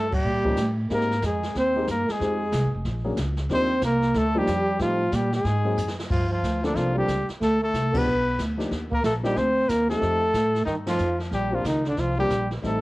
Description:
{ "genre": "jazz, small-group swing and bop", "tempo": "184 BPM", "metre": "4/4", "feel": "swing 63% on 8ths", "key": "G minor", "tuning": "A4 = 440 Hz", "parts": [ { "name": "warm trumpet", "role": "melody", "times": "0.0-12.8 s", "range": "D4 to C5", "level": "-26 LUFS", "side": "left 2 dB", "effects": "none" }, { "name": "mellow trombone", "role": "second line", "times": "0.0-12.8 s", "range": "D3 to C4", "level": "-27 LUFS", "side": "right 2 dB", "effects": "cassette tape" }, { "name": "upright bass", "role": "bass", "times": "0.0-12.8 s", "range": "F1 to Bb2", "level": "-27 LUFS", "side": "equal", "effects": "none" }, { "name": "jazz brush drum kit", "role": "drums", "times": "0.1-12.8 s", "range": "brushed snare drum, crash cymbal, hi-hat, kick drum, ride cymbal, snare drum", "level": "-33 LUFS", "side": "equal", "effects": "cassette tape" }, { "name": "dark grand piano", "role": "accompaniment", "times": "0.4-12.8 s", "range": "F3 to A4", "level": "-30 LUFS", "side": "left 2 dB", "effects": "cassette tape" } ], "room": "light reverb, small room ambience", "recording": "home recording on cassette", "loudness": "-22 LUFS", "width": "side -19 dB against mid", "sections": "0.0-6.1 A section; 6.1-12.8 B section", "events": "band accent 0.1, 7.9, 10.8; drum fill 5.8-6.1", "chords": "0.0 Eb7 (rootless); 0.9 Abmaj9; 2.2 Fm9; 2.9 Bb7alt; 3.5 Ebmaj9; 4.8 Am7b5; 5.5 Ab9; 6.1 Gm11; 7.4 Dm7; 8.1 G7; 8.7 Cm11; 10.0 F9; 11.3 Bb69" }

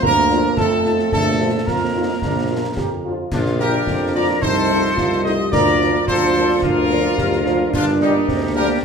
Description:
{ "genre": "military-style march for wind band", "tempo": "109 BPM", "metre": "2/4", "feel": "straight", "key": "Bb major", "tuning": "A4 = 444 Hz", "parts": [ { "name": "clear trumpet section", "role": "melody", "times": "0.0-8.7 s", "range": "F4 to Eb5", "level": "-23 LUFS", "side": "left 1 dB", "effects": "none" }, { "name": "dark euphonium", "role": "second line", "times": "0.0-8.8 s", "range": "A3 to G4", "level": "-22 LUFS", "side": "right 3 dB", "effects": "none" }, { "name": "flute section", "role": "second line", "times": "0.0-8.8 s", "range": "D4 to Bb5", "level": "-22 LUFS", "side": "equal", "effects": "none" }, { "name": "mellow woodwind section", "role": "second line", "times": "0.0-8.8 s", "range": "F4 to Eb5", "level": "-28 LUFS", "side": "right 1 dB", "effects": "none" }, { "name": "dark trombone section", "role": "sustained chords", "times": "0.0-8.8 s", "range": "F3 to G4", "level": "-28 LUFS", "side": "right 2 dB", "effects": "none" }, { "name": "warm tuba", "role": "bass", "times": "0.0-8.7 s", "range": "G1 to F2", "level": "-22 LUFS", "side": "right 1 dB", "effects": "none" }, { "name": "concert bass drum, concert snare drum and clash cymbals", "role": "drums", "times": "0.0-8.8 s", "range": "none", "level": "-25 LUFS", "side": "left 1 dB", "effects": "none" }, { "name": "dark French horn section", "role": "accompaniment", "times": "0.3-8.7 s", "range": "F3 to F4", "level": "-27 LUFS", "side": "left 3 dB", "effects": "none" } ], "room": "wet large studio reverb, RT60 1.2 s", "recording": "minimal, uncompressed stereo recording", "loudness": "-15 LUFS", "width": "side -6 dB against mid", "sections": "0.0-3.3 A section; 3.3-8.8 B section", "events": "none", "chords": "0.0 Bb/D; 0.6 F7; 1.1 Bb; 4.4 F7/C; 5.5 Bb/D; 7.7 Gm" }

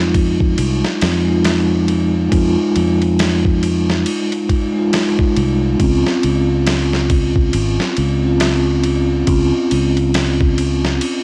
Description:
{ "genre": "trip hop", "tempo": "69 BPM", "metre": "4/4", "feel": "swing 60% on 16ths", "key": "F minor", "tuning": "A4 = 438 Hz", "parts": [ { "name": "vibraphone with soft mallets", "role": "accompaniment", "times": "0.0-11.2 s", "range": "Ab3 to F4", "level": "-19 LUFS", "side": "equal", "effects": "harmonic tremolo" }, { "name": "fingered electric bass", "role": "bass", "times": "0.0-11.0 s", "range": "Ab1 to F2", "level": "-20 LUFS", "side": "equal", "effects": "none" }, { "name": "boom bap sampler-style drum kit", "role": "drums", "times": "0.1-11.2 s", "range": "kick drum, ride cymbal, snare drum", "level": "-22 LUFS", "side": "equal", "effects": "studio reverb, cassette tape" } ], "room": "light reverb", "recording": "home recording on cassette", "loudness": "-16 LUFS", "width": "mono", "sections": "0.0-11.2 A section", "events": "none", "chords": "0.0 Fm7; 5.8 Dbmaj7" }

